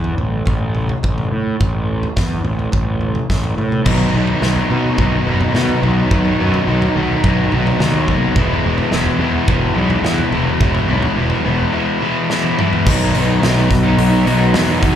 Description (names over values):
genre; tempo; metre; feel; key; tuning
quiet-loud alternative rock; 107 BPM; 4/4; straight; B major; A4 = 440 Hz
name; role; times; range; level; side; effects
fuzz picked electric bass; bass; 0.0-15.0 s; E1 to B2; -18 LUFS; equal; overdrive
big rock drum kit; drums; 0.0-15.0 s; crash cymbal, hi-hat, kick drum, snare drum, toms; -20 LUFS; equal; none
crunchy overdriven guitar; riff; 3.8-15.0 s; B2 to E4; -16 LUFS; equal; slapback echo
room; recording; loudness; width
studio ambience; live gig heard through the venue's PA, club reverb; -14 LUFS; side -10 dB against mid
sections
0.0-3.9 A section; 3.9-12.9 B section; 12.9-15.0 C section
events
drum fill 12.3-12.9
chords
0.0 A5; 3.9 B; 8.4 E; 12.9 B